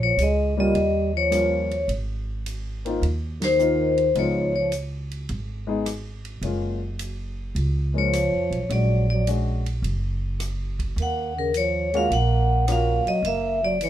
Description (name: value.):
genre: jazz, small-group swing and bop.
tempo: 106 BPM.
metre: 4/4.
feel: swing 69% on 8ths.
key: Eb minor.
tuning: A4 = 441 Hz.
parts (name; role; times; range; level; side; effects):
vibraphone with medium hard mallets; melody; 0.0-13.9 s; Bb4 to Gb5; -23 LUFS; left 3 dB; none.
breathy trombone; second line; 0.0-13.9 s; Db3 to Bb3; -27 LUFS; right 5 dB; none.
upright bass; bass; 0.0-13.9 s; Gb1 to F2; -26 LUFS; right 1 dB; none.
vintage drum kit; drums; 0.2-13.9 s; hi-hat, kick drum, ride cymbal, rim click, snare drum; -38 LUFS; right 2 dB; none.
warm baby grand piano; accompaniment; 0.6-13.0 s; G3 to Ab4; -28 LUFS; left 3 dB; none.
room: light reverb.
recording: minimal, uncompressed stereo recording.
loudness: -21 LUFS.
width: side -12 dB against mid.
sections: 0.0-13.9 A section.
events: band accent 3.3.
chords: 0.0 Bbm; 0.8 Eb9; 1.9 Ab6; 4.2 Db7; 6.4 Gbmaj9; 8.7 Bb7alt; 11.0 Ebm9; 13.2 Gb5.